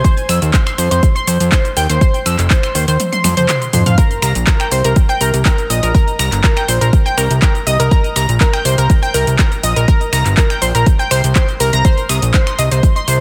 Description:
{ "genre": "progressive house", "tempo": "122 BPM", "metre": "4/4", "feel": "straight", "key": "C minor", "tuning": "A4 = 440 Hz", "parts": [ { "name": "analog pluck", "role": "arpeggios", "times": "0.0-13.2 s", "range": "Bb4 to Bb6", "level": "-20 LUFS", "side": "equal", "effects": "chorus, sidechain pumping, digital delay" }, { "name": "fat analog bass", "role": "bass", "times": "0.0-13.2 s", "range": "F1 to F2", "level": "-17 LUFS", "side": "equal", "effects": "tube saturation, sidechain pumping" }, { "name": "deep house drum kit", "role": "drums", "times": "0.0-13.2 s", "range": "finger snaps, handclaps, hi-hat, shaker, toms", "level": "-22 LUFS", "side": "equal", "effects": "overdrive, sidechain pumping on hats, sidechain pumping on perc, sidechain pumping on toms" }, { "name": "electronic kick drum", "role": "drums", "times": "0.0-12.9 s", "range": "none", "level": "-14 LUFS", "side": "equal", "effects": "overdrive" } ], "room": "little or no reverb", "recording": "none", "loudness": "-14 LUFS", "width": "mono", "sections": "0.0-13.2 A section", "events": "kick drops out 3.0-4.0; drum fill 3.0-4.0", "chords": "0.0 Fsus2; 4.0 Cm7; 11.8 Ab (rootless)", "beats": "| 0.04 0.54 1.03 1.52 | 2.01 2.50 3.00 3.49 | 3.98 4.47 4.96 5.46 | 5.95 6.44 6.93 7.42 | 7.91 8.40 8.90 9.39 | 9.88 10.37 10.86 11.36 | 11.85 12.34 12.83" }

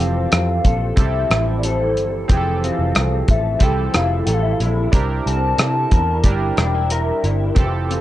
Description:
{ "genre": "indie pop, bedroom pop", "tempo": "91 BPM", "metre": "4/4", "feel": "straight", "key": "F major", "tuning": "A4 = 440 Hz", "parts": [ { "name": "hollow clarinet-like synth lead", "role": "melody", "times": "0.0-8.0 s", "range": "C5 to Bb5", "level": "-23 LUFS", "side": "left 3 dB", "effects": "lush chorus, analog delay" }, { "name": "electric guitar through a small old amp", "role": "accompaniment", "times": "0.0-8.0 s", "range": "C3 to Bb4", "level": "-26 LUFS", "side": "left 3 dB", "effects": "ensemble chorus, warbly pitch drift" }, { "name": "warm analog keys", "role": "accompaniment", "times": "0.0-8.0 s", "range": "E3 to Bb4", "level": "-25 LUFS", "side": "right 5 dB", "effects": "chorus, cassette tape" }, { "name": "vintage muted picked electric bass", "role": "bass", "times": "0.0-8.0 s", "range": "E1 to C3", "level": "-20 LUFS", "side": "equal", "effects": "none" }, { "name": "cloth-damped thuddy drum kit", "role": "drums", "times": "0.0-8.0 s", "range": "hi-hat, kick drum, rim click", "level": "-17 LUFS", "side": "equal", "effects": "vintage 12-bit sampler grit" } ], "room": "light reverb", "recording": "none", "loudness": "-16 LUFS", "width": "side -14 dB against mid", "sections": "0.0-8.0 A section", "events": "none", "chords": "0.0 Fmaj9; 4.9 C7", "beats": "0.32 0.98 1.64 | 2.29 2.95 3.61 4.27 | 4.93 5.59 6.25 6.91 | 7.57" }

